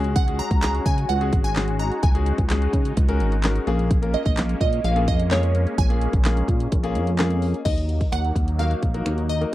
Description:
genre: dance-pop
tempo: 128 BPM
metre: 4/4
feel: straight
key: unclear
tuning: A4 = 440 Hz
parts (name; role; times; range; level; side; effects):
- bright concert grand piano; accompaniment; 0.0-9.5 s; G#3 to A#4; -28 LUFS; left 5 dB; sidechain pumping
- filtered supersaw swell; sustained chords; 0.0-9.5 s; F#3 to F#4; -33 LUFS; right 1 dB; sidechain pumping
- chorused synth bass; bass; 0.0-9.5 s; G#1 to C#3; -22 LUFS; equal; sidechain pumping
- pop drum kit; drums; 0.0-9.5 s; crash cymbal, finger snaps, handclaps, hi-hat, kick drum, snare drum; -22 LUFS; equal; none
- glassy wavetable pluck; melody; 0.2-9.5 s; C#5 to A#5; -27 LUFS; right 2 dB; chorus, slapback echo
room: little or no reverb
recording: dry, close 1970s-style studio recording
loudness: -19 LUFS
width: side -15 dB against mid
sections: 0.0-7.7 A section; 7.7-9.5 B section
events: break 0.0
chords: 0.0 C#sus4; 3.7 A#m7; 7.7 D#m

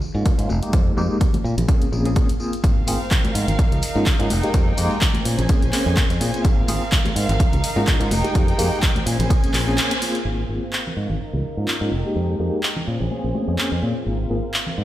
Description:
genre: filtered disco house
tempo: 126 BPM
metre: 4/4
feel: swing 55% on 16ths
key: Ab major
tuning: A4 = 436 Hz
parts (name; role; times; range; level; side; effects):
- tambourine and congas; percussion; 0.0-14.8 s; none; -30 LUFS; left 2 dB; sidechain pumping on perc, low-pass filter on perc
- tine electric piano; accompaniment; 0.1-14.4 s; Ab3 to Ab4; -26 LUFS; left 1 dB; medium tremolo, phaser, vintage 12-bit sampler grit, sidechain pumping, low-pass filter
- fingered electric bass; bass; 0.1-14.8 s; F1 to Bb2; -22 LUFS; equal; sidechain pumping, low-pass filter
- electronic kick drum; drums; 0.3-9.4 s; none; -18 LUFS; equal; none
- punchy analog drum machine; drums; 0.3-14.6 s; handclaps, hi-hat; -25 LUFS; equal; sidechain pumping on hats
- warm chamber violin section; sustained chords; 2.6-14.8 s; Ab3 to Ab5; -28 LUFS; right 2 dB; sidechain pumping, low-pass filter
room: light reverb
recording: played on a big sound system in a bare room, large studio reverb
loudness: -18 LUFS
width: side -14 dB against mid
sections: 0.0-10.3 A section; 10.3-14.8 B section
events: filter sweep 0.0-10.3, 10.3-14.8; band accent 9.8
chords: 0.5 Fm11; 1.4 Bbm9; 2.6 Ab69; 3.6 Db69; 4.3 Fm11; 5.3 Bbm9; 6.4 Ab69; 7.4 Db69; 8.1 Fm11; 9.1 Bbm9; 10.3 Ab69; 11.2 Db69; 11.9 Fm11; 12.9 Bbm9; 14.1 Ab69

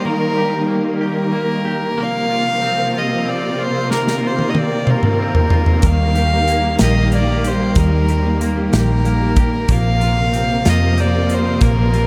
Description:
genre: six-eight pop ballad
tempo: 62 BPM (dotted quarters)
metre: 6/8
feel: straight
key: Eb major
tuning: A4 = 440 Hz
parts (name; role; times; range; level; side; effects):
- warm violin; melody; 0.0-12.1 s; Bb4 to F5; -23 LUFS; equal; diffuse ambient delay
- direct-recorded clean electric guitar; accompaniment; 0.0-12.1 s; Eb3 to Bb4; -27 LUFS; equal; double-tracked
- warm studio string section; sustained chords; 0.0-12.1 s; C3 to Bb3; -23 LUFS; equal; none
- modern studio drum kit; drums; 3.9-12.1 s; hi-hat, kick drum, snare drum, toms; -20 LUFS; equal; none
- picked steel-string acoustic guitar; arpeggios; 5.8-12.1 s; Eb3 to Bb4; -29 LUFS; equal; none
- vintage muted fingered electric bass; bass; 5.8-12.1 s; Bb1 to F2; -19 LUFS; equal; none
room: moderate huge ambient reverb, RT60 7.9 s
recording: dreamy mix soaked in reverb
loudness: -17 LUFS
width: mono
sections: 0.0-12.1 A section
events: drum fill 3.9-5.8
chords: 0.0 Eb; 2.0 Bbsus2; 5.8 Eb; 9.7 Bbsus2

